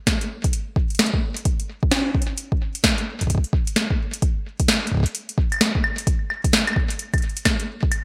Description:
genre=IDM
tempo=130 BPM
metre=4/4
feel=swing 62% on 16ths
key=none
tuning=none
part: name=booming analog drum machine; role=drums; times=0.1-8.0 s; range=hi-hat, snare drum, woodblock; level=-24 LUFS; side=equal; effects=gated reverb, delay
part: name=electronic kick drum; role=drums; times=0.1-7.9 s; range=none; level=-24 LUFS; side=equal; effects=none
room=moderate plate reverb, RT60 1.4 s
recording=bright 1980s-style digital production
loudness=-22 LUFS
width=mono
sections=0.0-8.0 A section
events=none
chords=none

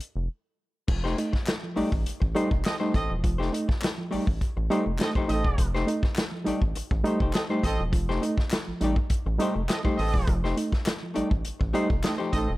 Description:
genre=funk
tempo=102 BPM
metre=4/4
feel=straight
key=F mixolydian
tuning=A4 = 439 Hz
part: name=vintage drum kit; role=drums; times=0.0-12.5 s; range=crash cymbal, hi-hat, kick drum, snare drum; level=-27 LUFS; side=equal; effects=none
part: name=rubbery square bass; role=bass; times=0.2-12.6 s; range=E1 to A1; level=-29 LUFS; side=equal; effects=none
part: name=hollow-body jazz guitar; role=accompaniment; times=0.9-12.5 s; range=A3 to D5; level=-32 LUFS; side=left 4 dB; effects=none
part: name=reed electric piano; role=stabs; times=0.9-12.5 s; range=F3 to Eb4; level=-30 LUFS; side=right 2 dB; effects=fast tremolo
part: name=group handclap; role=percussion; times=1.5-12.2 s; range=none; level=-39 LUFS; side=left 2 dB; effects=none
part: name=warm horn section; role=second line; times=2.7-12.5 s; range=C4 to Eb5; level=-32 LUFS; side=right 2 dB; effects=none
room=small room ambience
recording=none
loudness=-24 LUFS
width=side -18 dB against mid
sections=0.9-12.6 A section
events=break 0.3-0.9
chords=0.0 N.C.; 0.9 F9

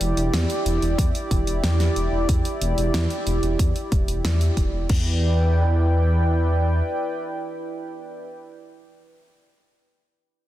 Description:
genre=synthwave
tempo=92 BPM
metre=4/4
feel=straight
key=E minor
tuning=A4 = 440 Hz
part: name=warm analog pad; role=sustained chords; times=0.0-8.3 s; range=E4 to G5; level=-26 LUFS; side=right 1 dB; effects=chorus, sidechain pumping
part: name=dark detuned saw bass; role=bass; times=0.0-6.8 s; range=E1 to E2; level=-21 LUFS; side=equal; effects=none
part: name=pop drum kit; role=drums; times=0.0-5.0 s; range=crash cymbal, hi-hat, snare drum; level=-30 LUFS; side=equal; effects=none
part: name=electronic kick drum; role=drums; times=1.0-5.0 s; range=none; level=-22 LUFS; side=equal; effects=none
room=light reverb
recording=dense, heavily limited modern master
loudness=-19 LUFS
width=side -14 dB against mid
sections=0.0-4.9 A section; 4.9-7.5 B section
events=none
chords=0.0 Em7

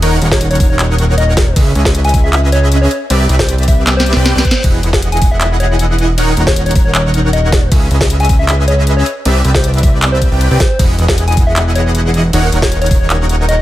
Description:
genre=future bass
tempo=156 BPM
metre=4/4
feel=half-time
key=unclear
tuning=A4 = 440 Hz
part: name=supersaw chords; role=riff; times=0.0-13.6 s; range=D#3 to G5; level=-18 LUFS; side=equal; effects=lush chorus, sidechain pumping
part: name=fat analog bass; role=bass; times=0.0-13.6 s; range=D#1 to C#2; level=-13 LUFS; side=equal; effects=sidechain pumping
part: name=trap drum kit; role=drums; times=0.0-13.6 s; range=handclaps, hi-hat, ride cymbal, snare drum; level=-17 LUFS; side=equal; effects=small room ambience
part: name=soft struck synth lead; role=melody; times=0.3-13.6 s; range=C5 to G#5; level=-20 LUFS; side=left 2 dB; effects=chorus, sidechain pumping, dub echo
part: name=electronic kick drum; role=drums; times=0.3-13.0 s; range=none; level=-12 LUFS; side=equal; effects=small room ambience
part: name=reverse cymbal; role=sound effects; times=4.1-4.6 s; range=none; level=-26 LUFS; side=left 2 dB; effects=none
room=little or no reverb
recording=none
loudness=-9 LUFS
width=side -14 dB against mid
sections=0.0-13.6 A section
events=drum fill 3.9-4.6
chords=0.0 D#m7; 1.6 C#m7; 2.9 Cmaj7; 4.6 Emaj7; 6.2 D#m7; 7.7 C#m7; 9.1 Cmaj7; 10.8 Emaj7; 12.3 D#m7

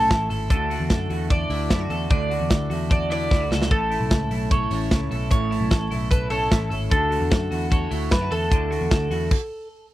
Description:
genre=jangly indie pop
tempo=150 BPM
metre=4/4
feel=straight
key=unclear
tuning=A4 = 440 Hz
part: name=mandolin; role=melody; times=0.0-9.7 s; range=A4 to D5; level=-26 LUFS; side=right 1 dB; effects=slapback echo
part: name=electric guitar through a small old amp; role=accompaniment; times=0.0-9.3 s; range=A2 to A4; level=-33 LUFS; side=right 4 dB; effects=wide subtle chorus
part: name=twelve-string electric guitar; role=arpeggios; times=0.0-9.8 s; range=A2 to A4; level=-29 LUFS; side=left 1 dB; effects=lush chorus
part: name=vintage muted picked electric bass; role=bass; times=0.0-9.3 s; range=G#1 to F#2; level=-27 LUFS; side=equal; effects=none
part: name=modern studio drum kit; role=drums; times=0.1-9.4 s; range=crash cymbal, hi-hat, kick drum, snare drum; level=-21 LUFS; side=equal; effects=none
room=little or no reverb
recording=dry, close 1970s-style studio recording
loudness=-20 LUFS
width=side -15 dB against mid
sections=0.0-9.9 A section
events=drum fill 3.3-3.7; stop 9.3-9.9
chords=0.0 A; 0.5 Dadd9; 3.7 A; 6.9 Dadd9

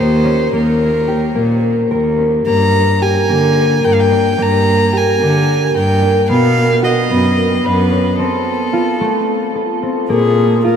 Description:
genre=contemporary instrumental, chamber music in an uneven meter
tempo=219 BPM (eighths)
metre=7/8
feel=straight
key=unclear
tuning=A4 = 437 Hz
part: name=rich violin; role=melody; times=0.0-9.5 s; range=A4 to Bb5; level=-20 LUFS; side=right 1 dB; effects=none
part: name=concert harp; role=arpeggios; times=0.0-10.8 s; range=A3 to B4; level=-14 LUFS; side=equal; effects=none
part: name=rich cello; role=bass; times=0.0-10.8 s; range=Eb2 to D3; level=-16 LUFS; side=equal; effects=none
part: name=dark viola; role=second line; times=10.1-10.8 s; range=Ab4 to Bb4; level=-15 LUFS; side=left 6 dB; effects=none
room=wet huge ambient reverb, RT60 8.9 s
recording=in a vast, echoing space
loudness=-12 LUFS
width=side -8 dB against mid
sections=0.0-10.1 A section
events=break 8.2-10.1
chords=0.0 Eb; 2.5 Gm; 6.3 Badd9; 8.2 F; 10.1 Bb5

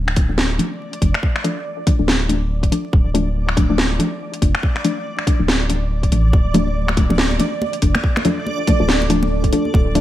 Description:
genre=deep dubstep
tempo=141 BPM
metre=4/4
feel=swing 59% on 16ths, half-time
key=D minor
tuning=A4 = 440 Hz
part: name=saturated sub bass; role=bass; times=0.0-10.0 s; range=D1 to A1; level=-20 LUFS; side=equal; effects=tube saturation
part: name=backwards swelling texture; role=texture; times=0.4-10.0 s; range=D5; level=-28 LUFS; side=right 3 dB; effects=built-in reverb
part: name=garage drum kit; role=drums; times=0.1-10.0 s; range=finger snaps, hi-hat, snare drum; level=-21 LUFS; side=equal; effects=gated reverb
part: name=filtered dub chord stab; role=stabs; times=0.2-10.0 s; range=F3 to D4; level=-22 LUFS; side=left 3 dB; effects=chorus, dub echo
part: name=electronic kick drum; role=drums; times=0.2-9.8 s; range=none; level=-16 LUFS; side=equal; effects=none
part: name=deep dark ambient pad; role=sustained chords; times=7.8-10.0 s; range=D4 to A4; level=-29 LUFS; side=right 2 dB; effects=chorus, built-in reverb
part: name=congas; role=percussion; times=6.3-10.0 s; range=none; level=-24 LUFS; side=right 2 dB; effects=none
room=light reverb, digital ambience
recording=bright 1980s-style digital production, vinyl crackle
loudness=-15 LUFS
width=side -13 dB against mid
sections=0.0-10.0 A section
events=filter sweep on synth stab 0.0-10.0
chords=0.0 Dm

